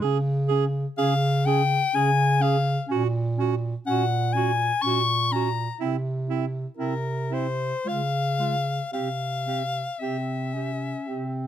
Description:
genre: classical, lyrical piece for single-reed quartet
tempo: 54-63 BPM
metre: 3/4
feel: rubato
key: unclear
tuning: A4 = 440 Hz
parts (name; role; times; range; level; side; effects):
- clear alto saxophone; second line; 0.0-11.2 s; E4 to Ab4; -29 LUFS; right 12 dB; none
- warm clarinet; accompaniment; 0.0-11.5 s; Ab3 to Db4; -31 LUFS; left 1 dB; none
- dark bass clarinet; bass; 0.0-11.5 s; Bb2 to Db3; -26 LUFS; right 1 dB; none
- clear soprano saxophone; melody; 1.0-11.5 s; Bb4 to Db6; -26 LUFS; left 5 dB; none
room: little or no reverb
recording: close, detailed microphones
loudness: -22 LUFS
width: side -10 dB against mid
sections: 0.0-11.5 A section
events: none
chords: 0.0 Db5; 2.9 Gb/Bb; 5.8 C; 7.9 Db; 8.9 C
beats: | 0.01 0.97 1.93 | 2.89 3.86 4.83 | 5.80 6.78 7.86 | 8.93 10.01 11.07

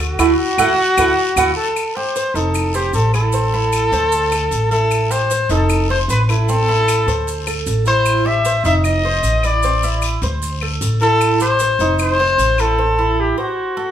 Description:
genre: latin, Cuban son and guajira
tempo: 152 BPM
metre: 4/4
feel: straight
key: unclear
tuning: A4 = 445 Hz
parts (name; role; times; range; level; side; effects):
- warm trumpet; melody; 0.0-13.9 s; F#4 to E5; -17 LUFS; left 1 dB; none
- Cuban tres; arpeggios; 0.0-13.9 s; C4 to C5; -21 LUFS; right 4 dB; none
- upright bass; bass; 0.0-13.3 s; F1 to D2; -19 LUFS; equal; none
- claves; percussion; 0.0-12.8 s; none; -27 LUFS; left 8 dB; none
- maracas; percussion; 0.0-12.8 s; none; -30 LUFS; right 4 dB; none
- guiro; percussion; 0.2-12.8 s; none; -30 LUFS; left 5 dB; none
room: moderate large studio reverb, RT60 0.9 s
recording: band playing live in one room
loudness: -14 LUFS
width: side -10 dB against mid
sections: 0.0-1.8 A section; 1.8-13.9 B section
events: band accent 0.2-1.8; break 12.8-13.9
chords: 0.2 Dadd9; 1.8 F9; 2.5 F7; 3.3 Am; 4.9 Am7; 5.7 F7; 6.5 Am; 8.1 Am7; 8.8 F7; 9.6 Am; 11.2 Am7; 12.0 F7; 12.8 Am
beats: | 0.19 0.58 0.98 1.37 | 1.76 2.15 2.55 2.94 | 3.33 3.73 4.12 4.51 | 4.91 5.30 5.69 6.09 | 6.48 6.87 7.27 7.66 | 8.05 8.45 8.84 9.23 | 9.63 10.02 10.42 10.81 | 11.20 11.60 11.99 12.38 | 12.78 13.17 13.56

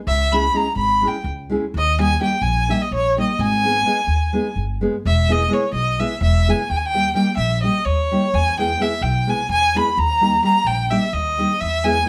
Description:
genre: balkan folk, Balkan wedding band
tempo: 255 BPM (eighths)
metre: 7/8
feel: straight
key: unclear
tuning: A4 = 440 Hz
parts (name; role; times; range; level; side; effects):
- warm violin; melody; 0.1-12.1 s; C#5 to B5; -21 LUFS; equal; none
- upright bass; bass; 0.1-12.0 s; E1 to E2; -24 LUFS; equal; none
- nylon-string guitar; accompaniment; 0.3-12.1 s; G3 to G#4; -25 LUFS; equal; none
room: wet studio reverb, RT60 0.6 s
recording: band playing live in one room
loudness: -19 LUFS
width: mono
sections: 0.0-5.1 A section; 5.1-12.1 B section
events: none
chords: 0.1 C#m; 1.7 D#; 3.4 G#m; 5.1 E; 6.7 D#; 8.3 E; 10.0 D#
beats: | 0.07 0.31 0.55 0.79 1.03 1.26 1.50 | 1.74 1.98 2.21 2.45 2.69 2.92 3.16 | 3.40 3.64 3.87 4.11 4.34 4.58 4.82 | 5.05 5.29 5.52 5.76 6.00 6.23 6.46 | 6.70 6.93 7.17 7.40 7.64 7.87 8.11 | 8.34 8.57 8.81 9.04 9.27 9.51 9.74 | 9.97 10.21 10.44 10.67 10.91 11.14 11.37 | 11.61 11.84 12.07

